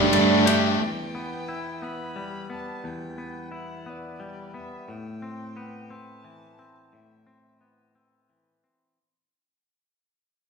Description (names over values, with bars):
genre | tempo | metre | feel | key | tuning
post-rock | 59 BPM (dotted quarters) | 6/8 | straight | E minor | A4 = 440 Hz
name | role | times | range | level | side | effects
dark violin | melody | 0.0-8.3 s | D5 to B5 | -34 LUFS | equal | none
pedal steel guitar | sustained chords | 0.0-0.8 s | none | barely audible | none | none
twangy electric guitar | arpeggios | 0.0-9.0 s | E2 to G4 | -32 LUFS | left 2 dB | none
overdriven electric guitar | riff | 0.0-0.8 s | G3 to G4 | -22 LUFS | right 9 dB | none
tight distorted guitar | riff | 0.0-0.8 s | G3 to G4 | -24 LUFS | left 8 dB | distortion
fuzz picked electric bass | bass | 0.0-0.8 s | G2 | -26 LUFS | right 1 dB | overdrive
ride cymbal | drums | 0.1-0.6 s | none | -31 LUFS | left 2 dB | none
room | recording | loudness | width
wet recital hall reverb, RT60 1.3 s | recorded in a church or concert hall | -24 LUFS | side -4 dB against mid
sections
0.8-9.0 A section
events
fade-out 0.8-9.0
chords
0.0 Gsus2; 0.8 Em; 4.9 Amadd9